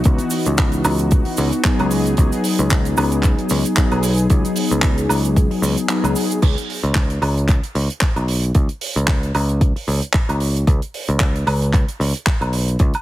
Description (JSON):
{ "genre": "nu-disco, nu disco", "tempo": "113 BPM", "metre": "4/4", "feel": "swing 56% on 16ths", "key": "unclear", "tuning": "A4 = 443 Hz", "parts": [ { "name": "mellow synth brass", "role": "accompaniment", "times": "0.0-6.4 s", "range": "E3 to G#4", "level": "-20 LUFS", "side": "left 1 dB", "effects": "chorus, tape echo" }, { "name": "tight funk drum kit", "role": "drums", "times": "0.0-13.0 s", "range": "cabasa, crash cymbal, handclaps, hi-hat, woodblock", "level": "-23 LUFS", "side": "right 2 dB", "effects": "none" }, { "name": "picked electric bass", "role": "bass", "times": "0.1-12.9 s", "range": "B1 to C#2", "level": "-19 LUFS", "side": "equal", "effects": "tube saturation" }, { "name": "electronic kick drum", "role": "drums", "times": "0.1-12.9 s", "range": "none", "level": "-16 LUFS", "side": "equal", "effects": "none" } ], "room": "small room ambience", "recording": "heavily compressed radio sound", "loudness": "-15 LUFS", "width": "side -15 dB against mid", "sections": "0.0-6.4 A section; 6.4-13.0 B section", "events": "drop 0.0-6.4; kick drops out 5.9-6.4", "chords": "0.0 C#m11; 1.9 G#m7; 6.4 N.C." }